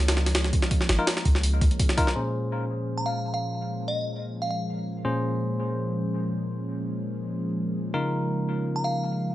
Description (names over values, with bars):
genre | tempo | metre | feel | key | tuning
drum and bass, jungle | 166 BPM | 4/4 | straight | Bb minor | A4 = 440 Hz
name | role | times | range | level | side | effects
lush unison pad | sustained chords | 0.0-9.3 s | F3 to Db4 | -32 LUFS | equal | chorus
warm 808-style bass | bass | 0.0-1.7 s | Ab1 to Db2 | -23 LUFS | equal | none
jungle sampler-style drum kit | drums | 0.1-2.2 s | hi-hat, kick drum, snare drum | -23 LUFS | equal | studio reverb
bell-like tine electric piano | stabs | 1.0-9.3 s | Bb2 to C5 | -29 LUFS | left 1 dB | low-pass filter, dub echo
glassy synth bell | melody | 3.0-4.6, 8.8-9.1 s | Eb5 to Bb5 | -30 LUFS | equal | chorus, tremolo, vintage 12-bit sampler grit, dub echo
room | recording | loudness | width
light reverb, digital ambience | nothing above 10.7 kHz | -24 LUFS | side -14 dB against mid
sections
0.0-2.2 A section; 2.2-9.3 B section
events
filter sweep on tine electric piano 2.2-9.3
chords
0.0 Db6; 2.2 Bbm7; 7.9 Db6